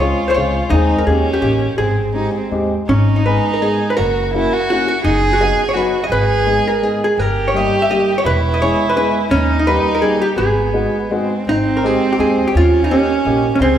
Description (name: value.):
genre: musette waltz.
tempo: 168 BPM.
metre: 3/4.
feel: swing 54% on 8ths, rubato.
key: G# minor.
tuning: A4 = 439 Hz.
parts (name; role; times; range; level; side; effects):
vintage hollow-body jazz guitar; melody; 0.0-13.8 s; C4 to E5; -17 LUFS; right 1 dB; none.
dark violin; second line; 0.0-13.8 s; B3 to G#4; -20 LUFS; right 2 dB; none.
dark upright piano; accompaniment; 0.0-13.5 s; F#3 to Ab4; -20 LUFS; left 2 dB; none.
upright bass; bass; 0.0-13.8 s; E1 to Eb2; -19 LUFS; left 1 dB; none.
room: wet recital hall reverb, RT60 1.8 s.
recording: recorded in a church or concert hall.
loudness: -13 LUFS.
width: side -10 dB against mid.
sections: 0.0-2.9 A section; 2.9-11.5 B section; 11.5-13.8 A section.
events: none.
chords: 0.0 Dbmaj7; 0.7 Ab/Eb; 1.1 Eb7; 1.8 Abmaj7; 2.9 G#m; 4.0 F#7; 5.1 B/F#; 6.1 G#m; 7.2 D#/G; 8.3 E; 9.3 D#; 10.4 G#m7; 11.5 Abmaj7; 12.6 Eb7.